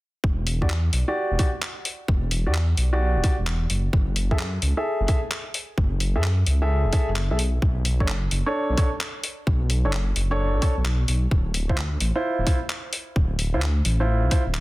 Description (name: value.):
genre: UK garage, two-step garage.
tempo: 130 BPM.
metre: 4/4.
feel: swing 65% on 16ths.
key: unclear.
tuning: A4 = 440 Hz.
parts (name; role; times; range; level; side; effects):
dark detuned saw bass; bass; 0.2-14.6 s; D1 to F#2; -22 LUFS; equal; none.
electronic kick drum; drums; 0.2-14.4 s; none; -23 LUFS; equal; small room ambience.
breakbeat sampler-style drum kit; drums; 0.5-14.6 s; handclaps, hi-hat; -29 LUFS; left 1 dB; small room ambience, soft clipping on snare.
warm grand piano; stabs; 0.6-14.4 s; D4 to E5; -28 LUFS; equal; low-pass filter, dub echo.
room: digital ambience.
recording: dense, heavily limited modern master.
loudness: -21 LUFS.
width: side -19 dB against mid.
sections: 0.2-14.6 A section.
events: none.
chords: 0.2 Em7; 3.7 F#m7; 7.4 Bm7; 11.3 Dm7.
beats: | 0.24 0.70 1.16 1.62 | 2.08 2.54 3.00 3.47 | 3.93 4.39 4.85 5.31 | 5.78 6.24 6.70 7.16 | 7.62 8.08 8.54 9.01 | 9.47 9.93 10.39 10.85 | 11.31 11.78 12.24 12.70 | 13.16 13.62 14.08 14.54.